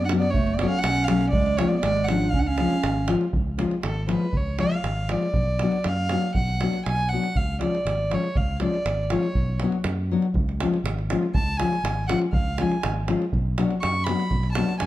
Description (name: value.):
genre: balkan folk, Balkan wedding band.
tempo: 120 BPM.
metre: 2/4.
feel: straight.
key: C# phrygian dominant.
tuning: A4 = 440 Hz.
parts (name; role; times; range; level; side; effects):
warm violin; melody; 0.0-14.9 s; A4 to C#6; -28 LUFS; right 1 dB; none.
mellow clarinet; second line; 0.0-3.1 s; G#3 to D4; -26 LUFS; right 4 dB; none.
fingered electric bass; bass; 0.0-14.9 s; F#1 to F#2; -27 LUFS; equal; none.
nylon-string guitar; accompaniment; 0.1-14.7 s; E#3 to F#4; -26 LUFS; left 4 dB; none.
davul; percussion; 0.1-14.9 s; none; -28 LUFS; right 2 dB; none.
room: light reverb.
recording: dark, warm production.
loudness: -21 LUFS.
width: side -14 dB against mid.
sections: 0.0-3.4 A section; 3.4-14.9 B section.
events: violin solo 3.4-14.9.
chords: 0.4 F#m; 1.4 C#; 5.4 Bm; 7.4 C#; 9.4 Bm; 10.4 C#; 13.3 Bm.